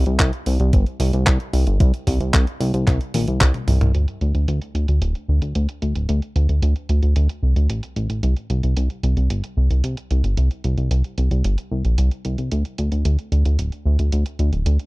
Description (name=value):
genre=italo disco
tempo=112 BPM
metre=4/4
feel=straight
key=unclear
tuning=A4 = 438 Hz
part: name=chorused synth bass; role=bass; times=0.0-14.8 s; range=D1 to D2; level=-18 LUFS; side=equal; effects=tube saturation
part: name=clean 12-bit digital drum machine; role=drums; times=0.1-14.9 s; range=handclaps, hi-hat, toms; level=-26 LUFS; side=equal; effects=low-pass filter on hats, low-pass filter on snare, low-pass filter on toms, low-pass filter on room
part: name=electronic kick drum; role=drums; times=0.2-3.5 s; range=none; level=-17 LUFS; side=equal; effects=none
room=little or no reverb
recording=dry, close 1970s-style studio recording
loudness=-18 LUFS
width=side -23 dB against mid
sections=0.0-3.9 A section; 3.9-14.9 B section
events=drum fill 3.1-3.9; band accent 3.4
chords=none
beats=0.20 0.73 1.27 | 1.80 2.34 2.87 3.41 | 3.94 4.48 5.02 5.55 | 6.09 6.62 7.16 7.70 | 8.23 8.77 9.30 9.84 | 10.37 10.91 11.45 11.98 | 12.52 13.05 13.59 14.12 | 14.66